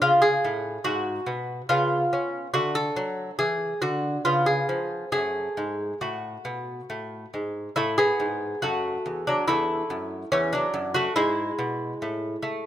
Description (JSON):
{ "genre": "classical, baroque-style dance for lute", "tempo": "71 BPM", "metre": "3/4", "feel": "rubato", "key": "F# minor", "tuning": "A4 = 439 Hz", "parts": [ { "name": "lute", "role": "solo", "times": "0.0-12.7 s", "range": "E2 to A4", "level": "-23 LUFS", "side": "equal", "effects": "none" } ], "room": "light reverb", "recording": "close, detailed microphones", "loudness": "-24 LUFS", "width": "side -11 dB against mid", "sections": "0.0-7.8 A section; 7.8-12.7 A section", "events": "none", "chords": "0.0 C#5; 1.7 C#7; 2.5 D; 4.2 C#7; 5.1 F#m; 7.8 E; 12.0 A5", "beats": "| 0.02 0.85 1.70 | 2.54 3.38 4.24 | 5.12 6.01 6.89 | 7.77 8.62 9.48 | 10.32 11.17 12.01" }